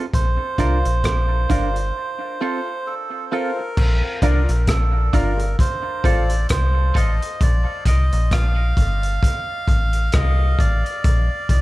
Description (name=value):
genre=dub reggae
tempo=66 BPM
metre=4/4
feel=swing 59% on 16ths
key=Bb major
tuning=A4 = 440 Hz
part: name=clean electric guitar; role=accompaniment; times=0.0-8.1 s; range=C4 to Bb4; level=-29 LUFS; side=right 6 dB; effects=high-pass filter, dub echo
part: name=melodica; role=melody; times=0.1-11.6 s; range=A4 to F5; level=-25 LUFS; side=right 2 dB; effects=dub echo
part: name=metallic FM bass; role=bass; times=0.1-11.6 s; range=G1 to C2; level=-19 LUFS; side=equal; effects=none
part: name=crunchy breakbeat drum kit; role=drums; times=0.1-11.6 s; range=crash cymbal, hi-hat, kick drum, rim click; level=-21 LUFS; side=equal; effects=none
part: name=bright grand piano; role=stabs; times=0.6-8.1 s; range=F4 to F5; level=-29 LUFS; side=left 3 dB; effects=high-pass filter, dub echo
part: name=bongos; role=percussion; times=1.0-4.9 s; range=none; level=-37 LUFS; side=right 2 dB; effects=none
room=small room ambience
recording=echo-heavy mix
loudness=-17 LUFS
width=side -18 dB against mid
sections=0.0-3.8 A section; 3.8-11.6 B section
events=break 2.0-3.8; part muted 3.8-11.6; filter sweep 3.8-11.0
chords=0.1 Bb; 2.0 F; 3.8 Bb; 5.6 F; 7.4 Bb; 9.2 F; 11.0 Bb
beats=| 0.14 1.04 1.95 2.86 | 3.77 4.68 5.59 6.50 | 7.41 8.32 9.22 10.13 | 11.04